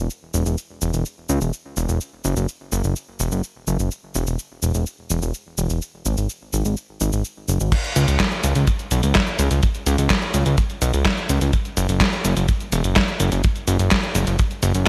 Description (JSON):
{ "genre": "italo disco", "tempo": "126 BPM", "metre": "4/4", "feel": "straight", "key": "C# minor", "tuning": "A4 = 440 Hz", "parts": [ { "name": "fat analog bass", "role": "bass", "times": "0.0-14.8 s", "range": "E1 to C#2", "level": "-22 LUFS", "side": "equal", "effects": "none" }, { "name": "detuned 8-bit digital drum machine", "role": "drums", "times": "0.1-14.9 s", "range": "cabasa, crash cymbal, handclaps, hi-hat, snare drum", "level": "-26 LUFS", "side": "equal", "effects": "gated reverb" }, { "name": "kick drum", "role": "drums", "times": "7.7-14.5 s", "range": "none", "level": "-23 LUFS", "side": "equal", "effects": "none" } ], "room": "light reverb", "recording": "bright 1980s-style digital production, vinyl crackle", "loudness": "-21 LUFS", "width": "mono", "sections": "0.0-7.7 A section; 7.7-14.9 B section", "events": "none", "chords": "none" }